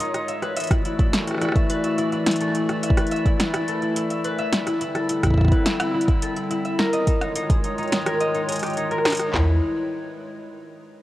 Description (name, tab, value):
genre	IDM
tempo	106 BPM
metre	4/4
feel	straight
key	unclear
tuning	A4 = 440 Hz
part	warbly tape-like pad	sustained chords	0.0-9.6 s	D3 to D5	-28 LUFS	equal	chorus, built-in reverb
part	concert harp	arpeggios	0.0-9.6 s	D#4 to E5	-24 LUFS	left 1 dB	low-pass filter, ping-pong delay
part	electro analog drum machine	drums	0.0-9.3 s	hi-hat, rim click, snare drum	-26 LUFS	equal	overdrive
part	glitchy drum kit	drums	0.7-9.5 s	handclaps, kick drum, snare drum, toms	-19 LUFS	equal	none
part	warm sub bass	bass	9.3-9.6 s	E2	-19 LUFS	equal	none
room	light reverb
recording	worn, warbling old tape, cassette tape, warbly pitch drift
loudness	-20 LUFS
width	side -15 dB against mid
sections	0.0-9.3 A section; 9.3-11.0 B section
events	none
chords	0.3 E9sus4; 4.5 D9sus4; 6.8 D#9sus4; 9.3 Em